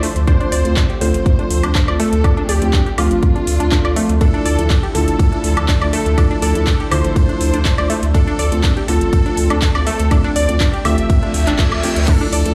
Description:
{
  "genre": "progressive house",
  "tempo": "122 BPM",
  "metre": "4/4",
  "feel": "straight",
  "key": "unclear",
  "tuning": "A4 = 441 Hz",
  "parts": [
    { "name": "plucky unison lead", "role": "melody", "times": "0.0-12.5 s", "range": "F4 to E5", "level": "-27 LUFS", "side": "equal", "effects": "tape echo" },
    { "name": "rich studio violin section", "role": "second line", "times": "0.0-12.5 s", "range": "F4 to E5", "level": "-32 LUFS", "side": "equal", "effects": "sidechain pumping, tape echo" },
    { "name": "lush unison pad", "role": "sustained chords", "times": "0.0-12.5 s", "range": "D3 to A4", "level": "-30 LUFS", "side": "equal", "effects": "none" },
    { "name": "unison pluck", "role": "arpeggios", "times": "0.0-12.4 s", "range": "D3 to D5", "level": "-26 LUFS", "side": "equal", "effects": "sidechain pumping, tape echo" },
    { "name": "felt-muted upright piano", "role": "stabs", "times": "0.0-12.5 s", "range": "F3 to A4", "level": "-25 LUFS", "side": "equal", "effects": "sidechain pumping" },
    { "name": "pop drum kit", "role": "drums", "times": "0.0-12.5 s", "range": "crash cymbal, handclaps, hi-hat, ride cymbal, woodblock", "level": "-26 LUFS", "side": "equal", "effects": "overdrive, sidechain pumping on toms, sidechain pumping on hats, sidechain pumping on cymbals, sidechain pumping on perc" },
    { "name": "saturated sub bass", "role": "bass", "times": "0.2-12.5 s", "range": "A1 to D2", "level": "-20 LUFS", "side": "equal", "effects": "sidechain pumping" },
    { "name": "electronic kick drum", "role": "drums", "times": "0.3-12.2 s", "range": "none", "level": "-17 LUFS", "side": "equal", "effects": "none" },
    { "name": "reverse cymbal", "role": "sound effects", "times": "11.3-12.1 s", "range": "none", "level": "-29 LUFS", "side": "equal", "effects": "none" }
  ],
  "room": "light reverb",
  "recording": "played on a big sound system in a bare room, large studio reverb",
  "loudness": "-15 LUFS",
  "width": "mono",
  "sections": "0.0-12.5 A section",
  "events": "reverse cymbal 11.3-12.1",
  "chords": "0.3 F; 4.2 Dmadd9; 8.1 F"
}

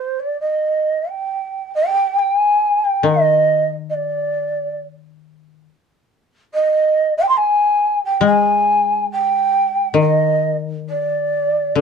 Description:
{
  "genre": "japanese traditional, Japanese chamber music",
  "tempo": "68 BPM",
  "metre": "4/4",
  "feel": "rubato",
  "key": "unclear",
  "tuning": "A4 = 437 Hz",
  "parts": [
    { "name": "breathy mellow shakuhachi", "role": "melody", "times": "0.0-11.7 s", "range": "C5 to C6", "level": "-16 LUFS", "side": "right 1 dB", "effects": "none" },
    { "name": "koto", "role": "accompaniment", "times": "3.0-11.8 s", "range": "D3 to Ab3", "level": "-19 LUFS", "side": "left 6 dB", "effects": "none" }
  ],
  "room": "light reverb",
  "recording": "dark, warm production",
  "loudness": "-15 LUFS",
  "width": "side -6 dB against mid",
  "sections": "0.0-11.8 A section",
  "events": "none",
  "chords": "none"
}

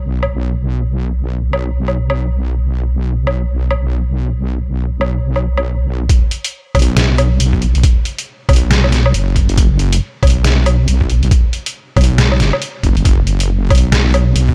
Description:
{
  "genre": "deep dubstep",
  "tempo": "138 BPM",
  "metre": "4/4",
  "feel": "swing 61% on 16ths, half-time",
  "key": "unclear",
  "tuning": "A4 = 444 Hz",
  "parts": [
    { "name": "wobble bass", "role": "bass", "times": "0.0-14.5 s", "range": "F#1 to B1", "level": "-16 LUFS", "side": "equal", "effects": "chorus, tube saturation" },
    { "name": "trip hop sampler-style drum kit", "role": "drums", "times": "0.2-14.5 s", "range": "hi-hat, snare drum, woodblock", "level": "-20 LUFS", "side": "equal", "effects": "small room ambience" },
    { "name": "electronic kick drum", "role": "drums", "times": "6.1-14.5 s", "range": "none", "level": "-15 LUFS", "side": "equal", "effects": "small room ambience" }
  ],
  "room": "digital ambience",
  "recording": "none",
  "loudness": "-15 LUFS",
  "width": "mono",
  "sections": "0.0-6.1 A section; 6.1-14.5 B section",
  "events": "drop 6.1-14.5",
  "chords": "none"
}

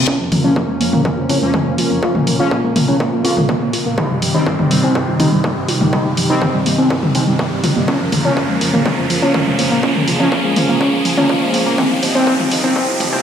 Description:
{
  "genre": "melodic techno",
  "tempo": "123 BPM",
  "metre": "4/4",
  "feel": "straight",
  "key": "Bb dorian",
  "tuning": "A4 = 440 Hz",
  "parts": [
    { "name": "fat analog lead", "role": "melody", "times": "0.0-13.2 s", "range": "F3 to F4", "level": "-19 LUFS", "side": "equal", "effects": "wide subtle chorus, sidechain pumping, dub echo" },
    { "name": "warm analog pad", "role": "sustained chords", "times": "0.0-13.2 s", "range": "C3 to Bb4", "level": "-22 LUFS", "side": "equal", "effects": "chorus, sidechain pumping" },
    { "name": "warbly dusty pluck", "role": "arpeggios", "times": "0.0-13.2 s", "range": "F3 to Db5", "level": "-23 LUFS", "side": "equal", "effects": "chorus, sidechain pumping, dub echo" },
    { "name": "analog synth brass", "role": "stabs", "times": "0.0-13.2 s", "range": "Eb3 to Db4", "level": "-21 LUFS", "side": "left 1 dB", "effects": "chorus, sidechain pumping, dub echo" },
    { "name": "reverse cymbal and riser", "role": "sound effects", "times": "0.0-13.2 s", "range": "none", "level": "-23 LUFS", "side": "equal", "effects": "none" },
    { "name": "dark detuned synth bell", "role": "second line", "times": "0.1-13.2 s", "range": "C4 to F4", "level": "-23 LUFS", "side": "equal", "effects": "chorus, sidechain pumping, low-pass filter, dub echo" },
    { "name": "electronic kick drum", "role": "drums", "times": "0.1-12.9 s", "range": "none", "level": "-24 LUFS", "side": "equal", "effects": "distortion, high-pass filter on kick, high-pass filter on room" },
    { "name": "techno drum kit", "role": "drums", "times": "0.3-13.1 s", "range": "hi-hat, toms", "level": "-20 LUFS", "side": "left 1 dB", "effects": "none" }
  ],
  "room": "wet recital hall reverb, RT60 1.5 s, digital ambience",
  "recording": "played on a big sound system in a bare room, large studio reverb, high-pass filter",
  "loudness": "-13 LUFS",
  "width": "side -8 dB against mid",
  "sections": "0.1-13.2 A section",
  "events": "build-up 0.1-13.2; riser 0.1-13.2; filter sweep on synth arpeggio sound 0.1-13.2; filter sweep on analog synth lead 0.1-13.2; filter sweep on synth bell 0.1-13.2; filter sweep 0.1-13.2",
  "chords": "0.1 Bbm; 4.0 Cm; 7.9 Bbm; 11.8 Cm"
}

